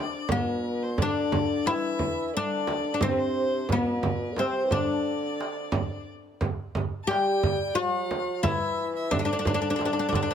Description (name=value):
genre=Arabic maqam ensemble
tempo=88 BPM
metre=4/4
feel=straight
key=unclear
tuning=A4 = 440 Hz
part: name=oud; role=melody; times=0.0-10.3 s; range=Bb3+50c to G4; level=-27 LUFS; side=left 3 dB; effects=none
part: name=clear violin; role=second line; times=0.0-10.3 s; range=Bb4+42c to A5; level=-36 LUFS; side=left 3 dB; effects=none
part: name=mellow bassoon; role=second line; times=0.0-10.3 s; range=B2-50c to G3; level=-32 LUFS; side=right 2 dB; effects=none
part: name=darbuka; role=percussion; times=0.2-10.3 s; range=none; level=-33 LUFS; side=right 3 dB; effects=none
part: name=frame drum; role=percussion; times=0.3-10.3 s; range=none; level=-31 LUFS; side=right 2 dB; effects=none
room=light reverb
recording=close, detailed microphones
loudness=-24 LUFS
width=side -8 dB against mid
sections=0.0-10.3 A section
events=none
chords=none